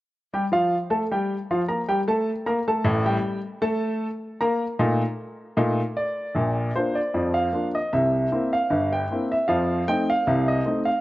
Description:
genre	ragtime piano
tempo	77 BPM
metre	2/4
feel	swing 54% on 16ths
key	Bb major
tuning	A4 = 441 Hz
part	clear upright piano	solo	0.3-11.0 s	G1 to Bb5	-21 LUFS	equal	none
room	moderate spring reverb, RT60 2.0 s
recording	cassette tape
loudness	-21 LUFS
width	side -17 dB against mid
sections	0.1-6.4 A section; 6.4-11.0 B section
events	none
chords	0.1 Bb5; 3.2 F7; 6.4 Bb; 7.9 C7; 9.5 F7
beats	| 0.13 0.91 | 1.69 2.47 | 3.25 4.02 | 4.80 5.58 | 6.37 7.15 | 7.92 8.70 | 9.48 10.26

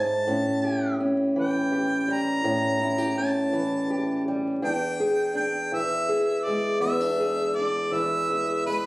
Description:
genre	acoustic country blues, solo or duo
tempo	55 BPM (dotted quarters)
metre	12/8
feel	straight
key	unclear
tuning	A4 = 441 Hz
part	bright harmonica	melody	0.0-8.9 s	B4 to A#5	-28 LUFS	right 1 dB	none
part	fingerpicked old ladder-braced acoustic guitar	accompaniment	0.0-8.9 s	E2 to G#4	-24 LUFS	equal	none
room	light reverb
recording	recorded on a phone in the room, club reverb, vinyl crackle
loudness	-22 LUFS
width	side -21 dB against mid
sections	0.0-8.9 A section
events	none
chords	0.3 A7; 4.6 E7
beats	| 0.27 1.36 2.44 3.54 | 4.63 5.72 6.82 7.91

